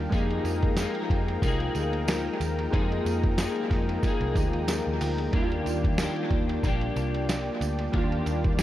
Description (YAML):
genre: indie pop, bedroom pop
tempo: 92 BPM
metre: 4/4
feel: swing 55% on 16ths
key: unclear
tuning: A4 = 440 Hz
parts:
  - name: electric guitar at the edge of break-up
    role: accompaniment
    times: 0.0-8.6 s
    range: Eb3 to Ab4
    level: -30 LUFS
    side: left 4 dB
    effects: analog chorus, warbly pitch drift, dub echo
  - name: warm analog keys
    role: accompaniment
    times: 0.0-8.6 s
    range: G3 to G4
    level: -34 LUFS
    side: right 3 dB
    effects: chorus, cassette tape, dub echo
  - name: warm analog pad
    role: sustained chords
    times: 0.0-8.6 s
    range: Bb4 to Bb5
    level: -37 LUFS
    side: right 1 dB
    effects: chorus
  - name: vintage muted picked electric bass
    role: bass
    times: 0.0-8.6 s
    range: Bb1 to F2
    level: -30 LUFS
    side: equal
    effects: none
  - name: lo-fi sampler-style drum kit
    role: drums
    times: 0.1-8.6 s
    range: hi-hat, kick drum, ride cymbal, snare drum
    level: -28 LUFS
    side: equal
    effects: dub echo
  - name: tambourine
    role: percussion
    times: 0.1-8.6 s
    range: none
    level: -44 LUFS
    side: right 7 dB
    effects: dub echo
room: light reverb, digital ambience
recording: echo-heavy mix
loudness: -24 LUFS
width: side -13 dB against mid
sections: 0.0-8.6 A section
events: none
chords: 0.1 Fm11; 5.3 Ebmaj7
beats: | 0.12 0.77 1.42 2.08 | 2.73 3.38 4.03 4.68 | 5.34 5.99 6.64 7.29 | 7.94 8.60